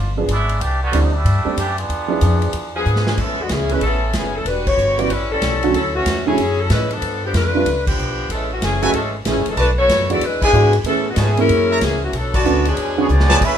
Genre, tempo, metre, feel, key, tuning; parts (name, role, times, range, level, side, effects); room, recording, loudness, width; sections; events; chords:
jazz, big band swing; 188 BPM; 4/4; swing 64% on 8ths; A major; A4 = 439 Hz
muted trombone section; second line; 0.0-2.8, 12.7-13.6 s; B2 to G#4; -23 LUFS; right 2 dB
upright bass; bass; 0.0-13.6 s; E1 to A2; -20 LUFS; equal
warm upright piano; accompaniment; 0.2-13.1 s; D3 to Ab4; -21 LUFS; right 5 dB
swinging big-band drum kit; drums; 0.3-13.5 s; crash cymbal, hi-hat, kick drum, ride cymbal, snare drum; -25 LUFS; equal
clear saxophone section; melody; 2.8-13.3 s; D3 to D5; -19 LUFS; left 2 dB
bright trumpet section; stabs; 8.8-13.4 s; E4 to A#5; -21 LUFS; right 1 dB
clear trumpet section; melody; 13.0-13.6 s; B3 to E5; -19 LUFS; equal
moderate large studio reverb, RT60 0.8 s; minimal, uncompressed stereo recording; -15 LUFS; side -9 dB against mid
0.0-3.2 A section; 3.2-13.4 B section
trombone section solo 0.0-3.2; drum fill 2.9-3.2, 13.1-13.4; band accent 4.6, 7.8, 10.4, 12.3
0.0 G7b9; 0.6 C69; 1.9 E7b9; 3.2 Amaj9; 4.5 Em9; 5.1 A13; 5.7 Dmaj9; 7.0 G9; 8.3 F#m9; 9.6 Bm7; 10.2 E7; 10.9 Amaj9; 11.5 F#7; 12.1 Bm7; 12.8 E13